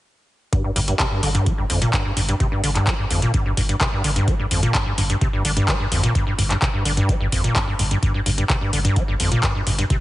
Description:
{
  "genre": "acid house",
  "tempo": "128 BPM",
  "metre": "4/4",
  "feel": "straight",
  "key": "G minor pentatonic",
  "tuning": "A4 = 440 Hz",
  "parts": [
    { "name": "acid bass, square", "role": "riff", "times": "0.5-10.0 s", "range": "F2 to G3", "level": "-21 LUFS", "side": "equal", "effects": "overdrive, wide subtle chorus, digital delay" },
    { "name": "booming analog drum machine", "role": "drums", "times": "0.5-10.0 s", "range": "handclaps, hi-hat", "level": "-24 LUFS", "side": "left 1 dB", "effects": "none" },
    { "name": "electronic kick drum", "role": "drums", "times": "0.5-10.0 s", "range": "none", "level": "-23 LUFS", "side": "equal", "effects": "none" },
    { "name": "warm sub bass", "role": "bass", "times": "0.8-9.8 s", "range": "G1", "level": "-24 LUFS", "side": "equal", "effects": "tube saturation, sidechain pumping" }
  ],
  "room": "light reverb, digital ambience",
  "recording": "heavily compressed radio sound, nothing above 10.5 kHz",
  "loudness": "-18 LUFS",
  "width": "side -16 dB against mid",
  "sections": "0.5-10.0 A section",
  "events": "none",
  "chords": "none",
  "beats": "| 0.53 0.99 1.46 1.93 | 2.40 2.87 3.34 3.81 | 4.28 4.75 5.21 5.68 | 6.15 6.62 7.09 7.56 | 8.03 8.49 8.96 9.43 | 9.90"
}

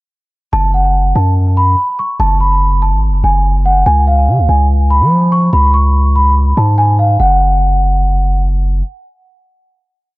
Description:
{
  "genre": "hip hop, drill",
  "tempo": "144 BPM",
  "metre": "4/4",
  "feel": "half-time",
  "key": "unclear",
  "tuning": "A4 = 440 Hz",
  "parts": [
    { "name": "large celesta", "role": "melody", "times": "0.5-8.4 s", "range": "E#5 to C#6", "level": "-14 LUFS", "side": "equal", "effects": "low-pass filter, analog delay" },
    { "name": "long sustained 808-style bass", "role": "bass", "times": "0.5-8.8 s", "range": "F#1 to E#3", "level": "-11 LUFS", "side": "equal", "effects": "none" }
  ],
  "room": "light reverb, small room ambience",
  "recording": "echo-heavy mix",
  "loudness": "-9 LUFS",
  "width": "side -21 dB against mid",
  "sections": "0.5-7.2 hook; 7.2-10.2 final note",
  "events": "none",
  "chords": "0.5 N.C.; 3.9 C#; 7.2 N.C.",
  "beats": "| 0.53 0.95 1.36 1.78 | 2.20 2.61 3.03 3.45 | 3.86 4.28 4.70 5.11 | 5.53 5.95 6.36 6.78 | 7.20 7.61 8.03 8.45"
}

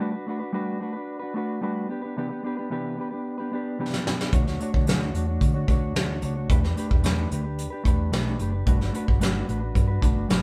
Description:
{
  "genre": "indie pop, bedroom pop",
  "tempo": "111 BPM",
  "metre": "4/4",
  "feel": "straight",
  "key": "unclear",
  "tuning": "A4 = 440 Hz",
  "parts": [
    { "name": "mellow electric guitar", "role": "accompaniment", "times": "0.0-10.4 s", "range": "C3 to C#5", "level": "-31 LUFS", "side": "equal", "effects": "vibrato effect" },
    { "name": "soft brush drum kit", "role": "drums", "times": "3.9-10.4 s", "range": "hi-hat, kick drum, snare drum", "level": "-26 LUFS", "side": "equal", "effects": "none" },
    { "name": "hollow-body short-scale fingered electric bass", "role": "bass", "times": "4.3-10.4 s", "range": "F#1 to D3", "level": "-30 LUFS", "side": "equal", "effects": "none" }
  ],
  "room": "light reverb",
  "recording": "band playing live in one room",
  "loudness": "-26 LUFS",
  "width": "mono",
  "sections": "0.0-10.4 A section",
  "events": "drum fill 3.2-4.3",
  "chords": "0.0 Gmaj9; 1.9 Cmaj9; 4.3 Dmaj9; 6.5 Em11; 8.7 Gmaj9",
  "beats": "| 0.00 0.54 1.08 1.62 | 2.17 2.71 3.25 3.79 | 4.33 4.87 5.42 5.96 | 6.50 7.04 7.58 8.13 | 8.67 9.21 9.75 10.30"
}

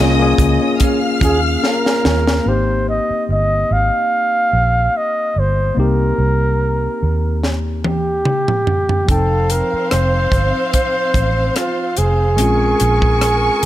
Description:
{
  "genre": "lush 1970s-style soul",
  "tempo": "72 BPM",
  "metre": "4/4",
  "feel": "swing 54% on 16ths",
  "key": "Ab major",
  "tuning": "A4 = 442 Hz",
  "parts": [
    { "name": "warm studio string section", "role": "second line", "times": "0.0-2.4, 9.1-13.7 s", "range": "C4 to F6", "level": "-22 LUFS", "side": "right 1 dB", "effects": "slapback echo" },
    { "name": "tine electric piano", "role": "accompaniment", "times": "0.0-13.7 s", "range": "F3 to G5", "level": "-22 LUFS", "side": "left 4 dB", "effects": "none" },
    { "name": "mellow electric guitar", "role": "riff", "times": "0.0-2.3 s", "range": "Db4 to Db5", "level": "-25 LUFS", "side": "right 8 dB", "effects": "none" },
    { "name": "vintage muted fingered electric bass", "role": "bass", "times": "0.0-13.7 s", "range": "F1 to Eb2", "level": "-17 LUFS", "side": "right 1 dB", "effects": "none" },
    { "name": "tight funk drum kit", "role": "drums", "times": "0.4-2.4, 7.4-13.7 s", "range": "hi-hat, kick drum, rim click, snare drum, toms", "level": "-18 LUFS", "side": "equal", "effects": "none" },
    { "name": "breathy flugelhorn", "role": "melody", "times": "1.2-13.7 s", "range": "F4 to F5", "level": "-18 LUFS", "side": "right 1 dB", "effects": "none" }
  ],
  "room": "light reverb, small room ambience",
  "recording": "none",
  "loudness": "-14 LUFS",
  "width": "side -14 dB against mid",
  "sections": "0.0-2.5 A section; 2.5-13.7 B section",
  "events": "drum fill 1.6-2.5, 7.4-9.1",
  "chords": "0.0 Eb9sus4; 2.5 Abmaj9; 5.8 Cm7; 9.1 F7(no3); 12.4 Bbm7",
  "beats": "0.80 1.63 | 2.46 3.29 4.12 4.95 | 5.77 6.60 7.43 8.26 | 9.09 9.91 10.74 11.56 | 12.39 13.21"
}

